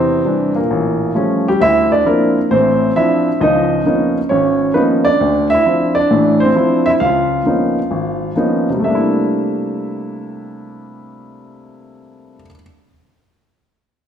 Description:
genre	solo jazz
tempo	133 BPM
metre	4/4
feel	swing 68% on 8ths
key	C mixolydian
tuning	A4 = 439 Hz
part	warm grand piano	solo	0.0-12.6 s	Ab1 to F5	-13 LUFS	equal	none
room	wet recital hall reverb, RT60 1.5 s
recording	recorded in a church or concert hall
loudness	-12 LUFS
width	side -8 dB against mid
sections	0.0-1.6 A section; 1.6-8.8 B section; 8.8-12.4 C section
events	none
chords	0.0 Em7b5; 0.7 A7b13; 1.6 Dm9; 3.4 Db13; 5.2 Dm9; 7.0 Db13; 8.8 C13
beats	0.25 0.70 1.15 | 1.60 2.05 2.50 2.95 | 3.40 3.85 4.30 4.75 | 5.20 5.65 6.10 6.55 | 7.00 7.46 7.91 8.36 | 8.81 9.26 9.71 10.16 | 10.61 11.06 11.52 11.97

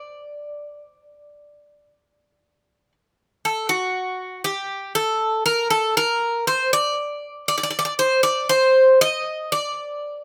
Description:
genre	greek folk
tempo	119 BPM (eighths)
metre	9/8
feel	straight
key	D phrygian dominant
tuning	A4 = 440 Hz
part	Greek bouzouki	solo	0.0-10.2 s	F#4 to Eb5	-21 LUFS	equal	none
room	light reverb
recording	recorded outdoors, with no room sound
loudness	-21 LUFS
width	mono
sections	0.0-4.0 A section; 4.0-10.2 B section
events	none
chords	none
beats	0.43 0.93 1.44 1.94 2.44 2.95 3.45 | 3.96 4.46 4.96 5.47 5.97 6.48 6.98 7.49 7.99 | 8.50 9.01 9.51 10.02

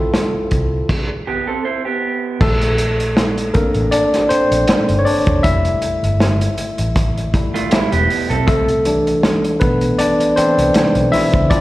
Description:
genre	lush 1970s-style soul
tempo	79 BPM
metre	4/4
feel	swing 54% on 16ths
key	C major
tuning	A4 = 440 Hz
part	barky tine electric piano	accompaniment	0.0-11.6 s	E3 to E5	-16 LUFS	left 1 dB	slapback echo
part	vintage drum kit	drums	0.1-11.6 s	crash cymbal, hi-hat, kick drum, snare drum	-18 LUFS	equal	none
part	vintage muted fingered electric bass	bass	0.3-11.6 s	E1 to D2	-19 LUFS	equal	none
part	electric guitar through a small old amp	riff	1.3-2.4, 7.5-8.7 s	G3 to C5	-19 LUFS	right 5 dB	slapback echo
room	light reverb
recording	live gig heard through the venue's PA, recital hall reverb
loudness	-14 LUFS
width	side -17 dB against mid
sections	0.0-2.4 A section; 2.4-11.6 B section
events	stop 0.9-2.4; tine electric piano solo 2.4-11.6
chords	0.0 Dm7 (rootless); 0.9 N.C.; 2.4 Bbmaj9; 5.4 Fmaj7; 8.5 Cmaj7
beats	0.13 0.89 1.65 | 2.41 3.17 3.92 4.68 | 5.44 6.20 6.96 7.72 | 8.47 9.23 9.99 10.75 | 11.51

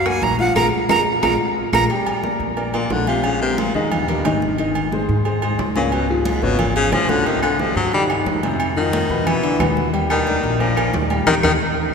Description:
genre	Afro-Cuban jazz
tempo	179 BPM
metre	4/4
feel	straight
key	Eb major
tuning	A4 = 440 Hz
part	breathy bright jazz flute	melody	0.0-1.8 s	F#5 to Bb5	-22 LUFS	right 4 dB	none
part	warm baby grand piano	accompaniment	0.0-11.5 s	Cb3 to Bb5	-22 LUFS	left 2 dB	none
part	upright bass	bass	0.0-11.6 s	Ab1 to Ab2	-24 LUFS	equal	none
part	claves	percussion	0.1-1.8, 7.4-11.5 s	none	-31 LUFS	left 3 dB	none
part	congas	percussion	0.1-11.5 s	none	-27 LUFS	right 1 dB	none
part	timbales and agogo bells	percussion	0.1-11.5 s	none	-26 LUFS	right 4 dB	none
part	clear baritone saxophone	second line	2.7-11.5 s	Eb2 to G3	-21 LUFS	left 2 dB	none
room	wet cathedral reverb, RT60 5.1 s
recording	recorded in a church or concert hall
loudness	-16 LUFS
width	side -5 dB against mid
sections	0.0-1.9 A section; 1.9-11.9 A section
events	flute solo 0.0-1.9; drum fill 0.6-1.9, 11.6-11.9; band accent 0.6-1.9, 11.3-11.9; baritone saxophone solo 1.9-11.9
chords	0.0 N.C.; 0.6 Bb5; 1.9 Bb6; 3.2 Bb5; 3.9 Eb; 4.6 Ab; 5.9 Db7; 7.3 Cm; 8.6 F5; 9.3 E5; 9.9 Ebmaj7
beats	0.23 | 0.56 0.90 1.23 1.57 | 1.90 2.24 2.57 2.91 | 3.24 3.58 3.91 4.25 | 4.58 4.92 5.25 5.59 | 5.92 6.26 6.59 6.93 | 7.26 7.60 7.93 8.26 | 8.60 8.93 9.27 9.60 | 9.94 10.27 10.60 10.94 | 11.27

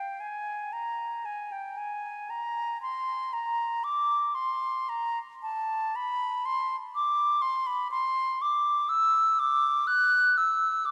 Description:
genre	classical, free, expressive piece for unaccompanied flute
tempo	36-42 BPM (dotted quarters)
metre	6/8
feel	rubato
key	unclear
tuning	A4 = 440 Hz
part	concert flute	solo	0.0-10.9 s	G5 to Gb6	-28 LUFS	equal	none
room	wet cathedral reverb, RT60 5.6 s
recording	none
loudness	-28 LUFS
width	mono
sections	0.0-10.9 A section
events	none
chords	none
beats	0.73 | 2.29 3.83 | 5.42 6.92 | 8.40 9.88

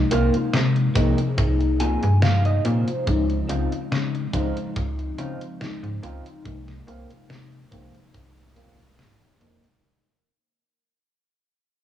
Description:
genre	vaporwave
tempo	71 BPM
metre	4/4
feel	swing 54% on 16ths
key	Ab major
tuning	A4 = 440 Hz
part	FM electric piano with soft pad layer	accompaniment	0.0-9.8 s	C3 to Ab4	-26 LUFS	left 2 dB	tremolo, wide subtle chorus, cassette tape, analog delay
part	slap-like FM bass	bass	0.0-9.6 s	C2 to Db3	-23 LUFS	equal	none
part	electric guitar at the edge of break-up	riff	0.1-9.6 s	Bb3 to Ab5	-28 LUFS	right 1 dB	wide subtle chorus, low-pass filter, cassette tape, analog delay
part	detuned 8-bit digital drum machine	drums	0.1-9.8 s	hi-hat, snare drum	-27 LUFS	left 1 dB	overdrive, vintage 12-bit sampler grit, cassette tape
part	kick drum	drums	1.0-8.3 s	none	-29 LUFS	equal	vintage 12-bit sampler grit, cassette tape
room	light reverb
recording	home recording on cassette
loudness	-20 LUFS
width	side -11 dB against mid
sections	0.0-9.8 A section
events	fade-out 0.0-9.8; filter sweep on clean electric guitar 0.0-9.8; clean electric guitar fill 1.4-3.1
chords	0.0 Ab69/C; 3.1 Dbmaj9; 6.4 Ab69/C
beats	0.53 1.38 2.22 | 3.07 3.91 4.76 5.60 | 6.45 7.29 8.14 8.98

